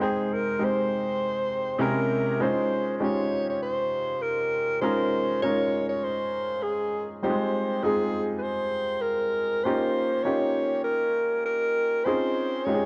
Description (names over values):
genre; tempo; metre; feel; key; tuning
soul; 100 BPM; 4/4; swing 54% on 16ths; unclear; A4 = 440 Hz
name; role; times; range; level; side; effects
breathy alto saxophone; melody; 0.0-12.9 s; Ab4 to Db5; -29 LUFS; equal; cassette tape
warm baby grand piano; accompaniment; 0.0-12.9 s; C3 to G5; -30 LUFS; equal; cassette tape
room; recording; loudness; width
moderate lush hall reverb, RT60 2.6 s; home recording on cassette; -26 LUFS; mono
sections
0.0-2.4 A section; 2.4-12.9 B section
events
none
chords
0.0 Abmaj9; 1.8 C7b9b13; 2.4 Dbmaj7; 7.2 Fm9; 9.6 Eb9; 12.1 Dbmaj7